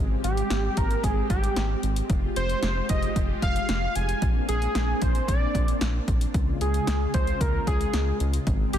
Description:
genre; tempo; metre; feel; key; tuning
synth-pop; 113 BPM; 4/4; straight; unclear; A4 = 440 Hz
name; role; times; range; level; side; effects
string machine, violas; sustained chords; 0.0-8.8 s; Db3 to G5; -31 LUFS; equal; ensemble chorus
round analog bass; bass; 0.0-8.8 s; F1 to Db2; -27 LUFS; equal; none
wide unison lead; melody; 0.2-8.8 s; G4 to Ab5; -29 LUFS; equal; none
punchy analog drum machine; drums; 0.2-8.8 s; hi-hat, kick drum, snare drum; -27 LUFS; equal; overdrive
room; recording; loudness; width
little or no reverb; dense, heavily limited modern master; -22 LUFS; side -10 dB against mid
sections
0.0-8.8 A section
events
none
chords
0.0 Abmaj7; 2.1 Fmadd9; 4.2 Bbadd9; 6.3 Db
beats
0.50 1.03 1.57 | 2.10 2.63 3.16 3.69 | 4.22 4.75 5.28 5.81 | 6.34 6.88 7.41 7.94 | 8.47

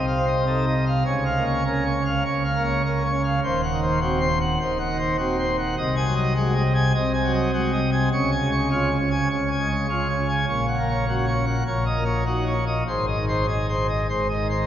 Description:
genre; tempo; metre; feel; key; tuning
classical, organ toccata; 102 BPM; 4/4; straight; unclear; A4 = 440 Hz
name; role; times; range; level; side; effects
pipe organ, plenum; solo; 0.0-14.7 s; Eb1 to Ab5; -20 LUFS; equal; none
room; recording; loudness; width
wet cathedral reverb, RT60 5.7 s; recorded in a church or concert hall, nothing above 7.5 kHz; -20 LUFS; side -10 dB against mid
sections
0.0-14.7 A section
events
none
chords
0.0 F7/C; 1.1 Bbm/Db; 3.4 Cdim/Eb; 5.8 Ab7/C; 8.1 Db; 10.5 Gb/Bb; 11.7 Ebm7/Bb; 12.9 Ab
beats
0.47 | 1.06 1.65 2.25 2.84 | 3.43 4.02 4.61 5.19 | 5.78 6.37 6.95 7.54 | 8.12 8.71 9.30 9.89 | 10.48 11.07 11.66 12.26 | 12.86 13.48 14.09

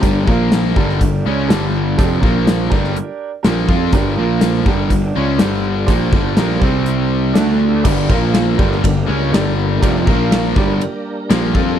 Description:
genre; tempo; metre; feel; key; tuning
classic rock; 122 BPM; 4/4; straight; G minor; A4 = 439 Hz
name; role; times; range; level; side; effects
bright upright piano; accompaniment; 0.0-11.7 s; Bb3 to F5; -26 LUFS; right 8 dB; none
tonewheel organ; sustained chords; 0.0, 7.5-11.8 s; G3 to F5; -26 LUFS; equal; none
cranked stack guitar; riff; 0.0-11.8 s; F2 to F4; -21 LUFS; left 13 dB; overdrive
raw garage guitar; riff; 0.0-11.8 s; F2 to F4; -22 LUFS; right 12 dB; overdrive
fuzz picked electric bass; bass; 0.0-11.8 s; F1 to F2; -18 LUFS; equal; overdrive
gated 80s drum kit; drums; 0.0-11.7 s; crash cymbal, hi-hat, kick drum, ride cymbal, snare drum; -16 LUFS; equal; none
room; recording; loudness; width
little or no reverb; none; -13 LUFS; side -10 dB against mid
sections
0.0-7.9 A section; 7.9-11.8 A section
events
none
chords
0.0 Gm; 0.3 Bb5; 0.8 Gm; 2.2 Bb5; 2.7 Gm; 4.2 Bb5; 4.7 Gm; 6.6 C5; 7.4 D5; 7.9 Gm; 8.1 Bb5; 8.6 Gm; 10.1 Bb5; 10.6 Gm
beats
| 0.02 0.51 1.00 1.49 | 1.98 2.47 2.96 3.45 | 3.94 4.42 4.92 5.40 | 5.89 6.38 6.88 7.37 | 7.86 8.35 8.84 9.33 | 9.82 10.31 10.81 11.30

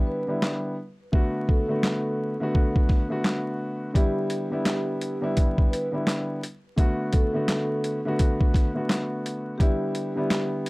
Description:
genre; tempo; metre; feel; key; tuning
hip hop, boom-bap hip-hop; 85 BPM; 4/4; swing 62% on 16ths; E minor; A4 = 439 Hz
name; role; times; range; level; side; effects
dark upright piano; accompaniment; 0.0-10.7 s; D3 to F#4; -27 LUFS; equal; cassette tape, high-pass filter, low-pass filter
vibraphone with soft mallets; melody; 0.1-10.7 s; G4 to B4; -32 LUFS; right 1 dB; high-pass filter, low-pass filter, tape echo
boom bap sampler-style drum kit; drums; 0.4-10.7 s; handclaps, hi-hat, kick drum, snare drum; -22 LUFS; equal; none
room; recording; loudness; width
little or no reverb; dry, gritty hardware recording, vinyl crackle; -23 LUFS; side -24 dB against mid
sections
0.0-10.7 A section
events
break 0.0-4.0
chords
0.0 Em7; 1.1 D6; 4.0 Em7; 6.8 D6; 9.6 Em7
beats
0.42 | 1.13 1.84 2.54 3.25 | 3.95 4.66 5.37 6.07 | 6.78 7.48 8.19 8.89 | 9.60 10.31

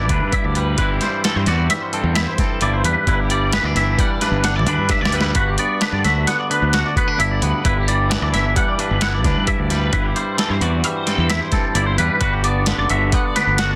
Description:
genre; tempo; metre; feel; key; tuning
math rock and midwest emo; 131 BPM; 5/4; straight; unclear; A4 = 440 Hz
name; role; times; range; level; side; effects
twangy electric guitar; accompaniment; 0.0-13.8 s; D2 to F#4; -25 LUFS; equal; none
twangy electric guitar; arpeggios; 0.0-13.8 s; G4 to F#5; -24 LUFS; equal; ensemble chorus
fuzz fingered electric bass; bass; 0.0-13.8 s; F#1 to G2; -23 LUFS; equal; overdrive
boom bap sampler-style drum kit; drums; 0.1-13.7 s; hi-hat, kick drum, snare drum, toms; -24 LUFS; equal; none
room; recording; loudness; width
little or no reverb; dense, heavily limited modern master; -18 LUFS; mono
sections
0.0-13.8 A section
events
drum fill 4.4-5.4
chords
0.0 G; 0.8 Am7/G; 3.1 Em7/G; 9.9 Am7/G; 12.2 Gmaj7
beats
0.33 | 0.79 1.24 1.70 2.16 2.62 | 3.07 3.53 3.99 4.44 4.90 | 5.36 5.82 6.27 6.73 7.19 | 7.64 8.10 8.56 9.01 9.47 | 9.93 10.38 10.84 11.30 11.76 | 12.21 12.67 13.13 13.59

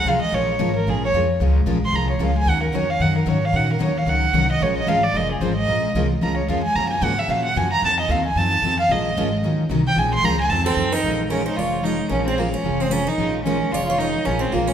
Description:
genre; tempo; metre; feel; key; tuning
acoustic string swing (jazz manouche); 224 BPM; 4/4; swing 57% on 8ths; Bb minor; A4 = 441 Hz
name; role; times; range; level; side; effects
warm violin; melody; 0.0-14.7 s; Bb3 to C6; -21 LUFS; right 1 dB; none
upright bass; bass; 0.0-14.7 s; F1 to Bb2; -24 LUFS; equal; none
picked steel-string acoustic guitar; accompaniment; 0.1-14.6 s; Db3 to Bb4; -25 LUFS; left 3 dB; none
picked steel-string acoustic guitar; accompaniment; 0.1-14.6 s; Eb3 to Bb4; -27 LUFS; right 3 dB; none
picked steel-string acoustic guitar; second line; 10.7-14.7 s; F4 to Db5; -28 LUFS; right 3 dB; none
room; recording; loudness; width
wet recital hall reverb, RT60 1.7 s; recorded in a church or concert hall; -18 LUFS; side -9 dB against mid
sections
0.0-11.0 A section; 11.0-14.7 B section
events
violin solo 0.0-11.0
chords
0.0 Bbm7; 2.5 Ebm7; 4.6 Bbm7; 6.8 Gbmaj7; 7.8 F7b9; 8.9 Bbm7; 9.4 Ebm7; 10.0 Bbm7; 10.5 F7b9; 11.0 Bbm7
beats
0.06 | 0.33 0.60 0.86 1.13 | 1.40 1.67 1.94 2.20 | 2.47 2.74 3.01 3.27 | 3.54 3.81 4.08 4.34 | 4.61 4.88 5.15 5.42 | 5.68 5.95 6.22 6.49 | 6.76 7.02 7.29 7.56 | 7.83 8.09 8.36 8.63 | 8.90 9.16 9.43 9.70 | 9.97 10.23 10.50 10.77 | 11.04 11.31 11.57 11.84 | 12.11 12.38 12.65 12.92 | 13.19 13.45 13.72 13.99 | 14.26 14.53

